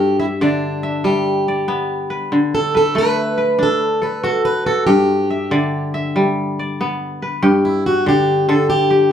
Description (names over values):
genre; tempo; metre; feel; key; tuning
west african traditional; 94 BPM (dotted quarters); 12/8; straight; G major; A4 = 440 Hz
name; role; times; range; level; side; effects
picked plugged-in steel-string acoustic guitar; melody; 0.0-9.1 s; D4 to B4; -17 LUFS; equal; none
kora; arpeggios; 0.0-9.1 s; G2 to E5; -18 LUFS; left 1 dB; none
room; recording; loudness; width
wet studio reverb, RT60 0.6 s; heard from further back in the room; -15 LUFS; side -9 dB against mid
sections
0.0-7.4 A section; 7.4-9.1 B section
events
steel-string acoustic guitar solo 7.4-9.1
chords
0.0 G; 2.3 D; 4.9 G